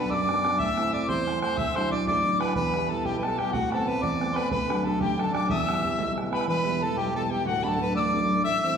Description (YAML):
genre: celtic folk, Celtic jig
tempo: 122 BPM (dotted quarters)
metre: 6/8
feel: straight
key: E minor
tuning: A4 = 442 Hz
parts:
  - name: mellow harmonica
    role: melody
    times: 0.0-8.8 s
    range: F#4 to E5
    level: -28 LUFS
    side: equal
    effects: none
  - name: bright reedy tin whistle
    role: second line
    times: 0.0-8.8 s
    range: F#5 to E6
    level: -31 LUFS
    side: left 4 dB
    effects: none
  - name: warm upright piano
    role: accompaniment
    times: 0.0-8.8 s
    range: D1 to E4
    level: -28 LUFS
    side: right 1 dB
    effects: none
  - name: bodhran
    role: percussion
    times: 0.1-6.5 s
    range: none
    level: -32 LUFS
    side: right 2 dB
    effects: none
room: wet recital hall reverb, RT60 1.7 s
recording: heard from further back in the room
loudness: -23 LUFS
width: side -7 dB against mid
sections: 0.0-6.5 A section; 6.5-8.8 A section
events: none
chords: 0.0 Bm; 0.6 Am; 1.6 Dadd9; 2.6 Em; 3.5 Amadd9; 4.5 D; 5.5 Em; 7.5 D